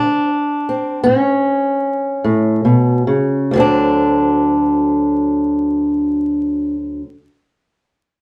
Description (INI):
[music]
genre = acoustic country blues, solo or duo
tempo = 45-55 BPM (dotted quarters)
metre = 12/8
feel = straight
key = D mixolydian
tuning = A4 = 439 Hz
[part]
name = fingerpicked old ladder-braced acoustic guitar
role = solo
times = 0.0-7.1 s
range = D2 to D4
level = -16 LUFS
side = equal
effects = none
[sound]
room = wet studio reverb, RT60 0.6 s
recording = heard from further back in the room, vinyl crackle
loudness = -16 LUFS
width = mono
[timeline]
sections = 0.0-3.5 A section; 3.5-8.2 B section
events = slowing down 0.0-3.5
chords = 0.0 D7(no3); 1.1 A; 3.5 D7